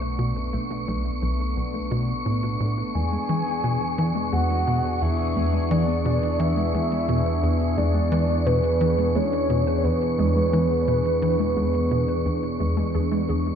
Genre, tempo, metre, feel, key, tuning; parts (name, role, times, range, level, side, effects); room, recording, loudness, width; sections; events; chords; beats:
ambient, sequencer-driven space music; 87 BPM; 4/4; straight; A4 = 441 Hz
sweeping resonant pad; sustained chords; 0.0-13.6 s; E3 to G#4; -28 LUFS; equal; chorus
warbly dusty pluck; arpeggios; 0.0-13.5 s; G#3 to B4; -32 LUFS; moving between left 5 dB and right 2 dB; chorus, auto-pan, tape echo
warm sub bass; bass; 0.0-13.6 s; B1 to E2; -29 LUFS; equal
wind-like tuned noise texture; texture; 0.0-13.6 s; C#6; -34 LUFS; equal; built-in reverb
tight sequencer bass; riff; 0.2-13.5 s; B1 to E3; -26 LUFS; equal; analog chorus, tape echo
soft octave-layered synth lead; melody; 2.9-13.3 s; B4 to G#5; -26 LUFS; equal; chorus, tremolo, tape echo
wet concert hall reverb, RT60 2.2 s; dark, warm production; -21 LUFS; side -8 dB against mid
0.0-13.6 A section
fade-in on synth arpeggio sound 0.0-13.6; fade-in on analog synth pad 0.0-13.6
0.0 Bm7; 2.9 E7
| 0.19 0.88 1.57 2.26 | 2.95 3.64 4.33 5.01 | 5.71 6.39 7.08 7.77 | 8.46 9.15 9.84 10.53 | 11.22 11.91 12.60 13.29